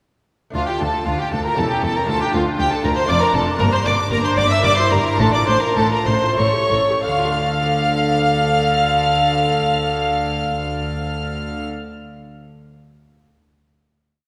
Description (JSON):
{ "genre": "classical, baroque-style concerto movement with solo episodes", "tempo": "88-120 BPM", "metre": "3/4", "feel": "straight", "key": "D minor", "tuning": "A4 = 442 Hz", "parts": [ { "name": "dark violin", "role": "melody", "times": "0.5-11.6 s", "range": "F4 to F5", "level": "-23 LUFS", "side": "equal", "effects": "none" }, { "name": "warm chamber violin section", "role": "melody", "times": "0.5-11.6 s", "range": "F5 to F6", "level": "-26 LUFS", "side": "equal", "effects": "none" }, { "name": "lute", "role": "accompaniment", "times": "0.5-11.9 s", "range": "D2 to F5", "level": "-31 LUFS", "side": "equal", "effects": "none" }, { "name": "warm studio violin section", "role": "second line", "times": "0.6-11.6 s", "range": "F4 to F5", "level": "-26 LUFS", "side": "equal", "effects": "none" }, { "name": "dark chamber viola section", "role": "accompaniment", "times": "0.6-11.6 s", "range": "Bb3 to A4", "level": "-30 LUFS", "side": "equal", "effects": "none" }, { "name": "dark chamber cello section", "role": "bass", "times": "0.6-11.6 s", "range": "D2 to D3", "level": "-27 LUFS", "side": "equal", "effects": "none" }, { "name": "rich chamber double bass section", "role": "bass", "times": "0.6-11.6 s", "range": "E1 to D2", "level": "-28 LUFS", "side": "equal", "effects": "none" } ], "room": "wet concert hall reverb, RT60 2.3 s", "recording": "recorded in a church or concert hall", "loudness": "-18 LUFS", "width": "mono", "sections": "0.6-7.0 ritornello; 7.0-11.1 final chord", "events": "slowing down 2.8-7.0", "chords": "0.6 Dm; 1.6 A7/E; 2.1 Dm; 3.1 Dm/F; 3.6 Gm; 4.6 Edim/G; 5.2 Dm/A; 6.4 A7; 7.0 Dm", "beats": "| 0.55 1.06 1.57 | 2.08 2.59 3.09 | 3.60 4.11 4.64 | 5.19 5.76 6.38 | 7.04 7.72 8.39 | 9.07 9.74 10.42" }